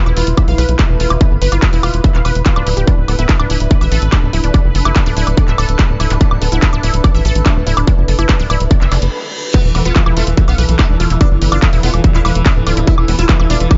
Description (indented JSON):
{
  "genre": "psychedelic trance",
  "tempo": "144 BPM",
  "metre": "4/4",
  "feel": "straight",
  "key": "unclear",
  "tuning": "A4 = 440 Hz",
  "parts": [
    { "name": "bubbling stepped-filter texture", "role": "sustained chords", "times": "0.0-13.8 s", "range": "A4 to B4", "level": "-28 LUFS", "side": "equal", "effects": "chorus, built-in reverb, sidechain pumping" },
    { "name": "unison pluck", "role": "riff", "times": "0.0-13.8 s", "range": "D4 to F5", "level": "-25 LUFS", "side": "equal", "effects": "sidechain pumping, tape echo" },
    { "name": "granular cloud pad", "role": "texture", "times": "0.2-13.8 s", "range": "D4 to B5", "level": "-29 LUFS", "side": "equal", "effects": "built-in reverb, sidechain pumping" },
    { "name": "tight sequencer bass", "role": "bass", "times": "0.1-13.7 s", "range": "D1 to B1", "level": "-17 LUFS", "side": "equal", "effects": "tube saturation" },
    { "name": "techno drum kit", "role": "drums", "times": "0.1-13.8 s", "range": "crash cymbal, handclaps, hi-hat, woodblock", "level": "-23 LUFS", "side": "equal", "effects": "none" },
    { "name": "electronic kick drum", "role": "drums", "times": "0.4-13.8 s", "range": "none", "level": "-14 LUFS", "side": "equal", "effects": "distortion" },
    { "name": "formant-sweep wobble bass", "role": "second line", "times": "0.7-13.3 s", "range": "A3 to D4", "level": "-35 LUFS", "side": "equal", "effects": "none" },
    { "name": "zap and reverse cymbal", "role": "sound effects", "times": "6.1-6.2, 8.9-9.5 s", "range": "none", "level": "-29 LUFS", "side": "equal", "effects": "none" },
    { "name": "sitar", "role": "melody", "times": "9.5-13.8 s", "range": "E3 to E4", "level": "-23 LUFS", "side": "equal", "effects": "phaser, sidechain pumping, tape echo" }
  ],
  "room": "little or no reverb",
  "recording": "dark, warm production, nothing above 7.6 kHz",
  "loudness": "-13 LUFS",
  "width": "mono",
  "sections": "0.0-9.5 A section; 9.5-13.8 B section",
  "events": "reverse cymbal 8.9-9.5; break 9.1-9.5; drop 9.5-13.8",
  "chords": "0.0 E5; 2.9 D5; 9.5 E5"
}